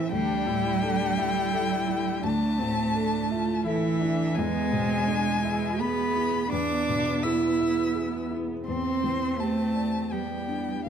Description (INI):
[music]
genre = neoclassical piano and strings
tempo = 84 BPM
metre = 3/4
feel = rubato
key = unclear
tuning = A4 = 440 Hz
[part]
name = rich violin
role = melody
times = 0.0-10.9 s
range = E5 to E6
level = -31 LUFS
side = left 5 dB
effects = none
[part]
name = rich cello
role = second line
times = 0.0-10.9 s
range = E3 to E4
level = -27 LUFS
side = right 4 dB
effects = none
[part]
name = dark upright piano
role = accompaniment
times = 0.0-10.9 s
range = D2 to E5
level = -31 LUFS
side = left 4 dB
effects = none
[part]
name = dark viola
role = accompaniment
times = 0.0-10.9 s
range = B3 to G#4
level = -34 LUFS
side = right 2 dB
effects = none
[sound]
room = moderate scoring stage reverb, RT60 1.5 s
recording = dark, warm production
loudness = -24 LUFS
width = side -8 dB against mid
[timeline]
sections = 0.0-10.9 A section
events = none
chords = 0.1 Dsus2; 4.4 E; 8.7 Cadd9/E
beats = | 0.11 0.82 1.53 | 2.23 2.94 3.65 | 4.37 5.08 5.79 | 6.51 7.23 7.95 | 8.67 9.39 10.12 | 10.87